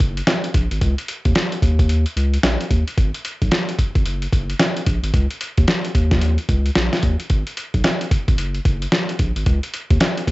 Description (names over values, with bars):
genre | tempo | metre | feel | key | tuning
R&B, new jack swing | 111 BPM | 4/4 | swing 62% on 16ths | unclear | A4 = 440 Hz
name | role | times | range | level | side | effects
round analog bass | bass | 0.0-10.3 s | F#1 to D#2 | -20 LUFS | equal | none
boom bap sampler-style drum kit | drums | 0.0-10.3 s | hi-hat, kick drum, snare drum | -18 LUFS | equal | cassette tape
room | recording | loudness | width
light reverb | home recording on cassette, nothing above 7.9 kHz | -17 LUFS | side -20 dB against mid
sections
0.0-10.3 A section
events
none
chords
none